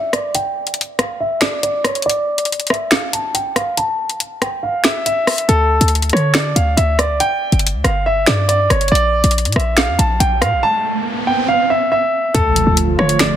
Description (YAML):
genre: hip hop, drill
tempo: 140 BPM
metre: 4/4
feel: half-time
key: D harmonic minor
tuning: A4 = 441 Hz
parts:
  - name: warm concert grand piano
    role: melody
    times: 0.0-13.4 s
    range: A4 to A5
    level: -17 LUFS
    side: right 1 dB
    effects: low-pass filter, ping-pong delay
  - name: drill drum kit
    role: drums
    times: 0.1-13.3 s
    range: finger snaps, hi-hat, rim click, snare drum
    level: -17 LUFS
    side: left 1 dB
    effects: overdrive
  - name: short 808-style bass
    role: bass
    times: 5.5-13.4 s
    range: G1 to D3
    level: -16 LUFS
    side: equal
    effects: none
  - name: riser and impact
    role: sound effects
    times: 10.1-13.4 s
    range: none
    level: -22 LUFS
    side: right 1 dB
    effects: none
  - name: dark analog pad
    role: sustained chords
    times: 12.3-13.4 s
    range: D3 to F4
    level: -20 LUFS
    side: right 3 dB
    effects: chorus
room: light reverb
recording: dense, heavily limited modern master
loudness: -14 LUFS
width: side -10 dB against mid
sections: 0.0-12.3 A section; 12.3-13.4 B section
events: break 0.0-5.5; filter sweep on grand piano 0.0-5.5; riser 10.1-12.3; impact 12.3-13.4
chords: 0.0 N.C.; 5.5 D5; 7.2 G5; 8.9 Bb; 10.6 N.C.; 12.3 Dm